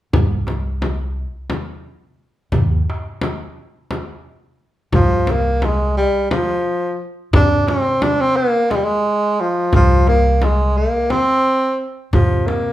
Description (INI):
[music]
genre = Turkish makam ensemble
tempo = 175 BPM (eighths)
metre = 7/8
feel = straight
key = C makam ussak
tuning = A4 = 444 Hz
[part]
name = upright bass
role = bass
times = 0.1-12.7 s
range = C2 to C3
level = -20 LUFS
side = equal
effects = none
[part]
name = darbuka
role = percussion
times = 0.1-12.6 s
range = none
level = -22 LUFS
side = right 1 dB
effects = none
[part]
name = frame drum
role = percussion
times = 0.1-12.6 s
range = none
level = -20 LUFS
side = left 1 dB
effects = none
[part]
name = breathy tenor saxophone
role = melody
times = 4.9-12.7 s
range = F3 to D4-29c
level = -16 LUFS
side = equal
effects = none
[sound]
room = wet large studio reverb, RT60 0.9 s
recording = band playing live in one room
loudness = -15 LUFS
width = side -14 dB against mid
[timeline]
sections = 0.1-4.9 A section; 4.9-12.7 B section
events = none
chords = none